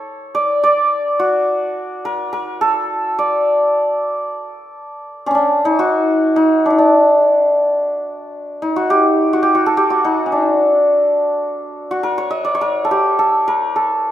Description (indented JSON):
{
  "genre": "persian",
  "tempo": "70 BPM (dotted quarters)",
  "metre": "6/8",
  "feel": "straight",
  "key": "D dastgah chahargah",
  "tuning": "A4 = 439 Hz",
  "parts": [
    { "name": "santur", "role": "solo", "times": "0.0-14.1 s", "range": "C#4 to Eb5+45c", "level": "-14 LUFS", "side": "equal", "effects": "none" }
  ],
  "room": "wet scoring stage reverb, RT60 1.5 s",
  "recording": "minimal, uncompressed stereo recording",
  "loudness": "-13 LUFS",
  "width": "side -12 dB against mid",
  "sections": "0.0-4.9 A section; 4.9-14.1 B section",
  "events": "none",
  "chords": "none",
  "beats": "0.63 | 1.48 2.34 | 3.20 4.06 | 4.92 5.77 | 6.63 7.49 | 8.35 9.20 | 10.06 10.92 | 11.77 12.63 | 13.49"
}